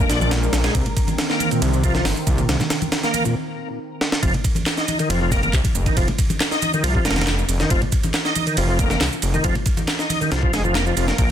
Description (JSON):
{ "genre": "breakbeat, breaks", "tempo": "138 BPM", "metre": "4/4", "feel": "straight", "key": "F dorian", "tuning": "A4 = 440 Hz", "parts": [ { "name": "phased analog pad", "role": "sustained chords", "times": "0.0-4.2 s", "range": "Eb3 to Bb4", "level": "-27 LUFS", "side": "right 2 dB", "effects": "phaser, chorus, sidechain pumping" }, { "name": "bright tonewheel organ", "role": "riff", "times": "0.0-11.3 s", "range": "Bb2 to Eb4", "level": "-24 LUFS", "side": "equal", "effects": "overdrive, chorus vibrato, slow rotary speaker, ping-pong delay" }, { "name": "detuned saw bass", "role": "bass", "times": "0.0-11.3 s", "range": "F1 to C2", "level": "-22 LUFS", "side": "equal", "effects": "none" }, { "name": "electronic shaker and handclaps", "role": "drums", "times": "0.0-11.3 s", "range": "none", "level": "-28 LUFS", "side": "right 3 dB", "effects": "studio reverb" }, { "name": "breakbeat sampler-style drum kit", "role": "drums", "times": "0.1-11.3 s", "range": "hi-hat, kick drum, ride cymbal, snare drum", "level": "-21 LUFS", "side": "equal", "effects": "studio reverb" }, { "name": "congas", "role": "percussion", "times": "0.2-10.7 s", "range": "none", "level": "-28 LUFS", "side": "left 1 dB", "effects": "none" } ], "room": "digital ambience", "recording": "dense, heavily limited modern master", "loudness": "-17 LUFS", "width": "side -10 dB against mid", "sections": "0.0-4.2 A section; 4.2-11.3 A section", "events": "break 3.4-4.2; drum fill 4.0", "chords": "0.0 Bb7; 0.8 Cm7; 4.2 F7(no3)", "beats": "0.32 | 0.75 1.19 1.62 2.06 | 2.49 2.92 3.36 3.79 | 4.23 4.66 5.10 5.53 | 5.97 6.40 6.84 7.27 | 7.71 8.14 8.58 9.01 | 9.45 9.88 10.32 10.75 | 11.19" }